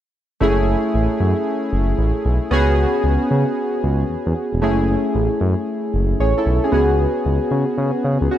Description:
R&B; 114 BPM; 4/4; swing 66% on 16ths; F# minor; A4 = 440 Hz
warm analog keys; accompaniment; 0.4-8.4 s; A3 to C#5; -19 LUFS; equal; chorus
smooth synth bass; bass; 0.4-8.3 s; E1 to C#3; -18 LUFS; equal
light reverb, digital ambience; -16 LUFS; side -11 dB against mid
0.4-8.4 A section
0.4 F#m9; 2.5 C#7sus4; 4.6 F#m9; 6.7 C#7sus4
| 0.41 0.94 1.46 1.99 | 2.52 3.04 3.57 4.09 | 4.62 5.15 5.67 6.20 | 6.73 7.25 7.78 8.30

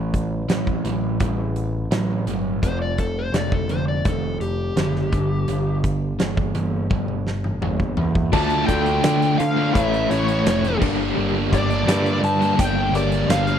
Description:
classic rock; 84 BPM; 4/4; straight; A4 = 439 Hz
sludgy distorted guitar; riff; 0.0-13.6 s; F2 to F4; -24 LUFS; right 2 dB; overdrive
growling picked electric bass; bass; 0.0-13.6 s; F1 to D3; -25 LUFS; equal; overdrive
huge arena drum kit; drums; 0.1-13.6 s; crash cymbal, hi-hat, kick drum, snare drum, toms; -25 LUFS; equal
overdriven slide guitar; second line; 2.6-5.8 s; G4 to D5; -28 LUFS; left 3 dB
fuzz lead guitar; melody; 8.3-13.6 s; C#5 to A5; -23 LUFS; left 1 dB; wah, distortion, slapback echo
warm baby grand piano; accompaniment; 8.3-13.6 s; E4 to D5; -30 LUFS; left 9 dB
crunchy overdriven guitar; riff; 8.3-13.6 s; G2 to D4; -24 LUFS; left 1 dB; tremolo
small room ambience; dry, close 1970s-style studio recording; -19 LUFS; side -9 dB against mid
0.0-8.3 A section; 8.3-13.6 B section
drum fill 6.9-8.3
0.0 A5; 2.6 Fsus2; 5.1 G5; 8.3 Dm; 9.7 A; 10.8 Gm
0.49 1.20 1.92 | 2.63 3.34 4.05 4.77 | 5.48 6.19 6.90 7.62 | 8.33 9.04 9.75 10.46 | 11.17 11.88 12.58 13.29

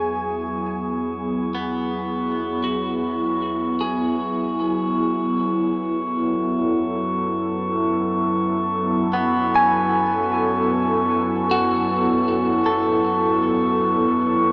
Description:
ambient; free time; F# minor; A4 = 442 Hz
warbly tape-like pad; sustained chords; 0.0-14.5 s; F#3 to A4; -21 LUFS; equal; chorus, built-in reverb, phaser
clean electric guitar; arpeggios; 0.0-14.2 s; B3 to G#5; -25 LUFS; equal; phaser, tape echo
warm sub bass; bass; 0.0-14.5 s; E2 to F#2; -39 LUFS; equal
glass harmonica; texture; 0.0-14.5 s; C#6; -24 LUFS; equal
wet huge ambient reverb, RT60 7.8 s; cassette tape, small speaker sound; -18 LUFS; side -33 dB against mid
0.0-14.5 A section
fade-in on clean electric guitar 0.0-14.5; fade-in on glass harmonica 0.0-14.5; filter sweep on ambient pad 0.0-14.5
0.0 E6; 5.0 F#madd9
free time

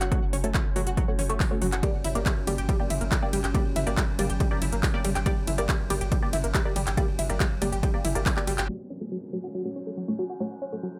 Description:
driving peak-time techno; 140 BPM; 4/4; straight; A4 = 440 Hz
tight sequenced synth; riff; 0.0-10.9 s; F#3 to G4; -34 LUFS; equal; chorus, tube saturation, vintage 12-bit sampler grit, sidechain pumping, digital delay
warm sub bass; bass; 0.0-8.7 s; F#1 to G1; -34 LUFS; equal; overdrive, sidechain pumping, low-pass filter
metallic inharmonic drone; drone; 0.0-11.0 s; F#3 to C#4; -40 LUFS; equal; chorus, built-in reverb, phaser, sidechain pumping
techno drum kit; drums; 0.0-8.7 s; handclaps, hi-hat, ride cymbal, toms; -34 LUFS; equal; sidechain pumping on hats, low-pass filter on hats, sidechain pumping on toms, low-pass filter on toms, low-pass filter on snare, sidechain pumping on cymbals, low-pass filter on cymbals
filtered dub chord stab; stabs; 0.1-10.8 s; A3 to D5; -36 LUFS; equal; phaser, subtle chorus, sidechain pumping, digital delay
electronic kick drum; drums; 0.1-8.3 s; -29 LUFS; equal
downlifter; sound effects; 8.7-11.0 s; -47 LUFS; equal
light reverb, digital ambience; low-pass filter; -27 LUFS; mono
0.0-8.7 A section; 8.7-11.0 B section
drop 0.0-8.7; drum fill 8.4-8.7; band accent 8.6; filter sweep on synth arpeggio sound 8.7-11.0; filter sweep on synth stab 8.7-11.0; filter sweep 8.7-11.0
0.0 F#m; 1.8 Gm; 8.7 F#m
| 0.12 0.55 0.97 1.40 | 1.83 2.26 2.69 3.12 | 3.55 3.97 4.40 4.83 | 5.26 5.69 6.12 6.55 | 6.97 7.40 7.83 8.26 | 8.69 9.12 9.55 9.97 | 10.40 10.83

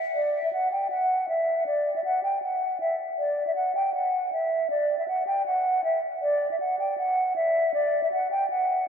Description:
hip hop; 158 BPM; 4/4; half-time; A4 = 440 Hz
breathy mellow silver concert flute; solo; 0.1-8.9 s; D5 to G5; -23 LUFS; equal; low-pass filter, diffuse ambient delay
wet lush hall reverb, RT60 3.3 s; dreamy mix soaked in reverb; -23 LUFS; side -7 dB against mid
0.1-8.9 A section
| 0.15 0.53 0.91 1.28 | 1.67 2.04 2.42 2.80 | 3.18 3.56 3.94 4.32 | 4.70 5.08 5.46 5.84 | 6.22 6.60 6.98 7.36 | 7.74 8.12 8.50

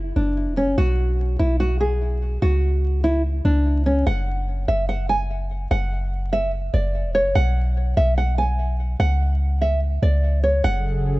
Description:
hip hop, trap; 146 BPM; 4/4; half-time; A4 = 440 Hz
clean 808-style bass; bass; 0.0-11.2 s; E1 to C#2; -20 LUFS; equal
nylon-string guitar; melody; 0.2-11.2 s; C#4 to G#5; -23 LUFS; right 1 dB; ping-pong delay
sweeping resonant pad; sustained chords; 10.6-11.2 s; C#3 to A4; -24 LUFS; right 1 dB; chorus
small room ambience; dark, warm production, vinyl crackle, nothing above 7.9 kHz; -19 LUFS; side -19 dB against mid
0.0-4.1 A section; 4.1-11.2 B section
0.0 F#5; 0.8 B5; 2.4 C#sus4; 4.1 N.C.; 7.4 B5; 9.0 C#sus4; 10.6 F#madd9
0.37 | 0.78 1.19 1.60 2.01 | 2.42 2.83 3.24 3.65 | 4.07 4.48 4.89 5.30 | 5.71 6.12 6.53 6.94 | 7.35 7.76 8.18 8.59 | 9.00 9.41 9.82 10.23 | 10.64 11.05

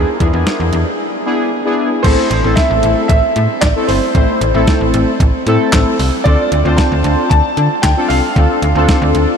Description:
synth-pop; 114 BPM; 4/4; straight; A4 = 440 Hz
warm concert grand piano; melody; 0.0-9.1 s; G#4 to A5; -18 LUFS; right 1 dB; analog chorus, analog delay
analog synth brass; accompaniment; 0.0-9.3 s; A3 to C5; -16 LUFS; left 1 dB; chorus
slap-like FM bass; bass; 0.0-9.3 s; G1 to D3; -16 LUFS; equal
clean 12-bit digital drum machine; drums; 0.2-9.3 s; crash cymbal, handclaps, hi-hat, kick drum, snare drum; -16 LUFS; equal
wet huge ambient reverb, RT60 7.6 s; dreamy mix soaked in reverb; -11 LUFS; side -7 dB against mid
0.0-2.0 A section; 2.0-9.4 B section
0.0 E7; 2.0 Am; 6.3 Dm7
0.47 0.99 1.52 | 2.05 2.57 3.10 3.62 | 4.15 4.68 5.20 5.73 | 6.26 6.78 7.31 7.83 | 8.36 8.89

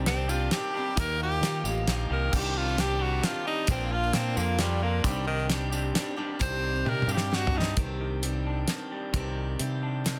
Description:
folk rock and heartland rock; 132 BPM; 3/4; straight; C minor; A4 = 441 Hz
picked steel-string acoustic guitar; accompaniment; 0.0-10.2 s; Bb2 to G4; -38 LUFS; equal
electric guitar through a small old amp; riff; 0.0-10.2 s; Bb2 to G4; -38 LUFS; equal
fingered electric bass; bass; 0.0-10.2 s; A1 to Eb3; -32 LUFS; equal
clear tenor saxophone; melody; 0.1-7.8 s; Eb3 to C5; -33 LUFS; equal
damped 70s drum kit; drums; 0.1-10.2 s; crash cymbal, hi-hat, kick drum, snare drum, toms; -31 LUFS; equal; soft clipping on kick
tambourine; percussion; 0.3-7.2 s; -44 LUFS; equal
mellow tonewheel organ; sustained chords; 2.3-7.8 s; Bb3 to Bb4; -46 LUFS; equal
small room reverb; dense, heavily limited modern master; -28 LUFS; mono
0.0-7.8 A section; 7.8-10.2 B section
tenor saxophone solo 0.0-7.8; drum fill 6.9-7.8
0.0 Cmadd9; 1.0 Ebadd9; 2.3 Cmadd9; 3.7 Bb; 5.0 Cmadd9
0.06 0.52 | 0.97 1.42 1.88 | 2.33 2.78 3.24 | 3.69 4.14 4.60 | 5.05 5.50 5.96 | 6.41 6.86 7.32 | 7.77 8.23 8.68 | 9.14 9.59 10.05

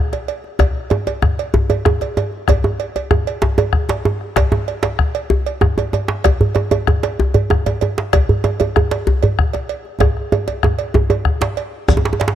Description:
west african traditional, West African drum ensemble; 128 BPM (dotted quarters); 12/8; straight
bombo; percussion; 0.1-12.0 s; -18 LUFS; left 2 dB
cowbell; percussion; 0.1-12.3 s; -24 LUFS; right 10 dB
djembe; percussion; 0.1-12.0 s; -20 LUFS; left 2 dB
djembe; percussion; 0.9-12.3 s; -17 LUFS; right 2 dB
congas; percussion; 11.9-12.1 s; -26 LUFS; right 3 dB
shekere; percussion; 11.9-12.0 s; -29 LUFS; left 3 dB
light reverb, small room ambience; dry, close 1970s-style studio recording; -15 LUFS; side -10 dB against mid
0.0-11.9 A section
drum fill 10.0-11.9
0.12 | 0.59 1.07 1.54 2.01 | 2.48 2.95 3.42 3.90 | 4.37 4.84 5.31 5.78 | 6.25 6.72 7.19 7.66 | 8.13 8.60 9.07 9.54 | 10.01 10.48 10.95 11.42 | 11.89

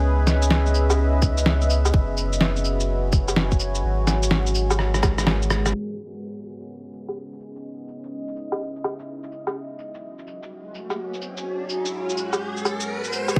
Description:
future garage; 126 BPM; 4/4; swing 65% on 16ths; C# dorian; A4 = 439 Hz
deep dark ambient pad; sustained chords; 0.0-13.4 s; G#3 to B5; -31 LUFS; equal; chorus, built-in reverb, sidechain pumping
warm sub bass; bass; 0.0-5.7, 13.4 s; F#1 to C#2; -24 LUFS; equal
electronic snare drum, cabasa, shaker, woodblock and rim click; drums; 0.3-13.3 s; -26 LUFS; equal
electronic kick drum; drums; 1.2-5.2, 13.4 s; -22 LUFS; equal
riser; sound effects; 10.4-13.4 s; -35 LUFS; equal
light reverb; vinyl crackle, low-pass filter; -23 LUFS; mono
0.0-5.7 A section; 5.7-13.4 B section
drum fill 4.8-5.7; band accent 5.6; filter sweep on ambient pad 5.7-13.4; filter sweep 5.7-13.4; riser 10.4-13.4
0.0 C#m7; 1.9 F#7sus4; 3.8 G#m7; 5.7 C#m7; 9.6 F#7sus4; 11.5 G#m7
| 0.03 0.51 0.98 1.46 | 1.93 2.41 2.89 3.36 | 3.84 4.31 4.79 5.27 | 5.74 6.22 6.70 7.17 | 7.65 8.12 8.60 9.08 | 9.55 10.03 10.51 10.98 | 11.46 11.93 12.41 12.89 | 13.36

